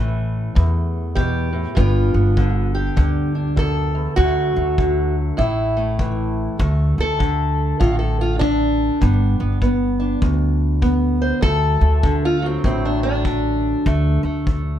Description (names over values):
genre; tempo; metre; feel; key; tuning
acoustic country blues, solo or duo; 99 BPM; 4/4; swing 63% on 8ths; D major; A4 = 438 Hz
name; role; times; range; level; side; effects
fingerpicked steel-string acoustic guitar; melody; 0.0-14.8 s; D2 to C5; -20 LUFS; equal; slapback echo
upright bass; bass; 0.0-14.8 s; G1 to E2; -20 LUFS; equal; none
kick drum; drums; 0.6-14.6 s; none; -22 LUFS; left 1 dB; none
room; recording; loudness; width
little or no reverb; none; -16 LUFS; side -10 dB against mid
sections
0.0-6.6 A section; 6.6-14.8 B section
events
steel-string acoustic guitar solo 6.6-14.8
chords
0.0 A5; 1.8 G; 4.2 D; 5.4 A5; 6.6 D5; 9.0 G; 11.4 D